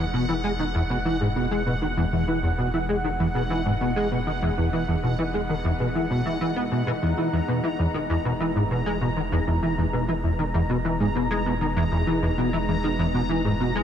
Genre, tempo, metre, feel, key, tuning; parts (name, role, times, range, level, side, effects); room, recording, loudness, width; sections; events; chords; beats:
ambient; 98 BPM; 4/4; straight; E lydian; A4 = 440 Hz
evolving wavetable pad; sustained chords; 0.1-13.8 s; E3 to G#4; -32 LUFS; equal; chorus, built-in reverb
plucky analog bass; riff; 0.0-13.8 s; E2 to B3; -23 LUFS; equal; ensemble chorus, ping-pong delay
round analog bass; bass; 0.0-13.8 s; E1; -32 LUFS; equal
bubbling stepped-filter texture; texture; 0.0-13.8 s; F#5 to A#5; -32 LUFS; right 1 dB; chorus, built-in reverb
moderate huge ambient reverb, RT60 9.1 s; -22 LUFS; side -9 dB against mid
0.0-13.8 A section
fade-in on ambient pad 0.0-13.8
0.0 Emaj7
0.29 0.90 1.51 | 2.12 2.74 3.35 3.96 | 4.57 5.18 5.80 6.41 | 7.02 7.63 8.25 8.86 | 9.47 10.08 10.70 11.31 | 11.92 12.53 13.14 13.76